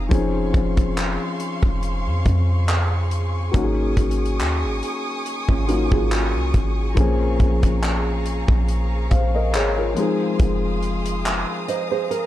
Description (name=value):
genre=contemporary R&B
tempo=70 BPM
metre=4/4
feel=swing 54% on 16ths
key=Db major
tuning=A4 = 438 Hz
part: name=felt-muted upright piano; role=accompaniment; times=0.0-12.3 s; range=F3 to F5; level=-24 LUFS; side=left 3 dB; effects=none
part: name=rich studio string section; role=sustained chords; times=0.0-12.3 s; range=Ab4 to Eb6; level=-30 LUFS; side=right 1 dB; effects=sidechain pumping
part: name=nylon-string guitar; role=arpeggios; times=0.0-0.1, 5.5-12.3 s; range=Db4 to Eb5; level=-26 LUFS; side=right 7 dB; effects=none
part: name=clean 808-style bass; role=bass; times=0.0-11.4 s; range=F1 to F2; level=-22 LUFS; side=equal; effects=none
part: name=modern studio drum kit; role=drums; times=0.1-12.3 s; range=handclaps, hi-hat, kick drum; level=-22 LUFS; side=equal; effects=none
room=little or no reverb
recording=dark, warm production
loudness=-18 LUFS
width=side -14 dB against mid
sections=0.0-12.3 A section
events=none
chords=0.1 Dbmaj7/F; 3.5 Ab7sus4; 7.0 Bbm7; 10.0 Fm7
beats=| 0.11 0.97 1.83 2.69 | 3.54 4.40 5.26 6.11 | 6.97 7.83 8.69 9.54 | 10.40 11.26 12.11